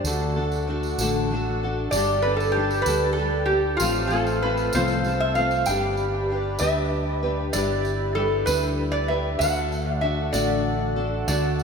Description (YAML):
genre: acoustic folk duo or small band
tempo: 64 BPM (dotted quarters)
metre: 6/8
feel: straight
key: G major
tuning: A4 = 440 Hz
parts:
  - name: metal-body resonator slide guitar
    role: melody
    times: 0.0-11.6 s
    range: F4 to G5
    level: -25 LUFS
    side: equal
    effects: tape echo
  - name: picked steel-string acoustic guitar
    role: accompaniment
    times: 0.0-11.6 s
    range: A2 to B4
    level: -27 LUFS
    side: left 2 dB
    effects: ensemble chorus
  - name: mellow accordion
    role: sustained chords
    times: 0.0-11.6 s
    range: D3 to B4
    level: -31 LUFS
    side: right 1 dB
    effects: none
  - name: mellow fretless electric bass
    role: bass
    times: 0.0-11.6 s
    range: G1 to D2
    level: -28 LUFS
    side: equal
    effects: none
  - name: tambourine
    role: percussion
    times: 0.0-11.6 s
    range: none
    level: -35 LUFS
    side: right 5 dB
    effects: none
room: wet lush hall reverb, RT60 2.6 s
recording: dreamy mix soaked in reverb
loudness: -21 LUFS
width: side -5 dB against mid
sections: 0.0-5.7 A section; 5.7-11.6 B section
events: resonator guitar played with a steel bar solo 0.0-5.7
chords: 0.1 D; 1.9 Gsus2; 3.8 F/A; 5.7 G; 9.4 D